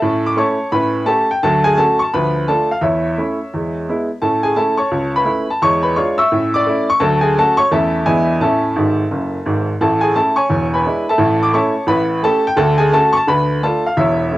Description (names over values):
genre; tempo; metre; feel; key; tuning
jazz, stride piano; 172 BPM; 4/4; swing 59% on 8ths; A major; A4 = 438 Hz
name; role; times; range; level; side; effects
clear upright piano; solo; 0.0-14.4 s; E1 to E6; -13 LUFS; equal; cassette tape
room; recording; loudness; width
light reverb, small room reverb; home recording on cassette; -13 LUFS; side -16 dB against mid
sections
0.0-9.8 A section; 9.8-14.4 A section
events
upright piano fill 8.8-9.8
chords
0.0 A; 0.7 A7; 1.4 Dmaj7; 2.1 Dm; 2.8 A/E; 3.5 E; 4.2 A; 4.9 A/C#; 5.6 E7b9; 6.3 A; 7.0 Dmaj7; 7.7 A/E; 8.1 E7; 8.4 A; 10.5 E7; 11.2 A; 11.9 A7; 12.6 Dmaj7; 13.3 Dm